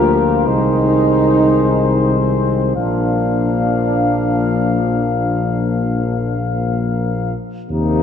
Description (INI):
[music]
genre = classical, hymn-like piece for brass band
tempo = 46-56 BPM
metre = 4/4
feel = rubato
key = unclear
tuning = A4 = 441 Hz
[part]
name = warm flugelhorn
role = melody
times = 0.0-8.0 s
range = Eb4 to F5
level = -22 LUFS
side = left 6 dB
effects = none
[part]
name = warm French horn section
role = second line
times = 0.0-8.0 s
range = C4 to G4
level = -19 LUFS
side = right 3 dB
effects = none
[part]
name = clear euphonium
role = accompaniment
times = 0.0-8.0 s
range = Ab3 to Bb3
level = -22 LUFS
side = left 5 dB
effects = none
[part]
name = clear trombone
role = accompaniment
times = 0.0-8.0 s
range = C3 to F3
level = -24 LUFS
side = right 2 dB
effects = none
[part]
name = mellow tuba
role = bass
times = 0.0-8.0 s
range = Bb1 to Eb2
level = -19 LUFS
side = left 1 dB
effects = none
[sound]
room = wet church reverb, RT60 3.8 s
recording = dark, warm production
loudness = -14 LUFS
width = side -8 dB against mid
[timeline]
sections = 0.0-7.7 A section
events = none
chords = 0.5 Ab/C; 2.8 Bb